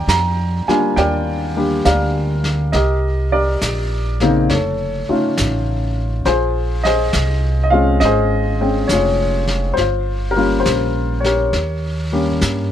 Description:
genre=jazz ballad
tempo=68 BPM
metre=4/4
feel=swing 67% on 8ths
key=unclear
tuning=A4 = 444 Hz
part: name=warm baby grand piano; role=accompaniment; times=0.0-12.7 s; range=Db3 to Bb5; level=-17 LUFS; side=left 1 dB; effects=none
part: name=upright bass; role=bass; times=0.0-12.7 s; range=F1 to G2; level=-19 LUFS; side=equal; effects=none
part: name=vintage brush drum kit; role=drums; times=0.1-12.7 s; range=brushed snare drum, hi-hat, snare drum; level=-25 LUFS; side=equal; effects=none
room=little or no reverb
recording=close, detailed microphones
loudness=-15 LUFS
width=side -10 dB against mid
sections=0.0-12.7 A section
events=none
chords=0.0 Ebmaj9; 2.7 Cm7; 4.5 F7b13; 6.2 Bbm9; 9.8 Gm7b5; 11.5 Eb7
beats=0.07 0.96 1.85 | 2.73 3.61 4.49 5.37 | 6.25 7.12 8.00 8.88 | 9.76 10.64 11.52 12.41

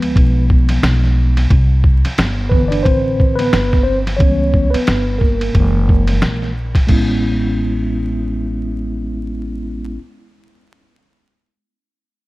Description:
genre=hip hop, jazz-hop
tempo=89 BPM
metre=4/4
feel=swing 59% on 16ths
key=A major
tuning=A4 = 440 Hz
part: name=mellow tine electric piano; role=accompaniment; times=0.0-10.0 s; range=D3 to D5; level=-18 LUFS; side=equal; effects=medium stereo tremolo
part: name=upright bass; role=bass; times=0.0-10.0 s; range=F#1 to D2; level=-17 LUFS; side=equal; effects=none
part: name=lo-fi sampler-style drum kit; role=drums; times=0.0-7.1 s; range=crash cymbal, hi-hat, kick drum, ride cymbal, snare drum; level=-16 LUFS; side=equal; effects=none
room=digital ambience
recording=vinyl crackle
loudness=-13 LUFS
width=side -19 dB against mid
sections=0.0-6.9 A section; 6.9-9.6 B section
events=tine electric piano solo 0.0-6.9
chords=0.0 G7b9 (rootless); 1.5 Cmaj9; 4.2 C#m7b5; 5.5 F#7; 6.9 Amaj9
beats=0.15 0.83 | 1.50 2.17 2.85 3.52 | 4.20 4.87 5.54 6.22 | 6.89 7.57 8.24 8.92

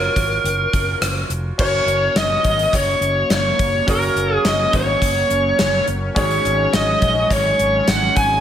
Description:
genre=1980s-style pop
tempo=105 BPM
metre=4/4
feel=straight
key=unclear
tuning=A4 = 444 Hz
part: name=bluesy overdriven lead guitar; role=melody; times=0.0-8.4 s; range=A#4 to G#5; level=-18 LUFS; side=equal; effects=distortion
part: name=warm concert grand piano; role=accompaniment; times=0.0-8.4 s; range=G#2 to C#5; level=-26 LUFS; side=right 2 dB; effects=none
part: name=fretless electric bass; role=bass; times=0.0-8.4 s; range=E#1 to A#1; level=-24 LUFS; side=equal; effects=none
part: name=gated 80s drum kit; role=drums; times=0.2-8.3 s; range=crash cymbal, hi-hat, kick drum, rim click, snare drum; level=-21 LUFS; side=equal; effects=gated reverb
part: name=chorused pulse-width pad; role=sustained chords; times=1.6-8.4 s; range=F#3 to C#4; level=-27 LUFS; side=equal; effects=none
room=light reverb, small room ambience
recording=none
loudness=-15 LUFS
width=side -10 dB against mid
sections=0.0-1.6 A section; 1.6-8.4 B section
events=none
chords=0.0 A#m7; 1.6 F#; 6.2 C#sus4/G#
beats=0.45 1.02 | 1.59 2.16 2.73 3.31 | 3.88 4.45 5.02 5.59 | 6.16 6.73 7.30 7.88

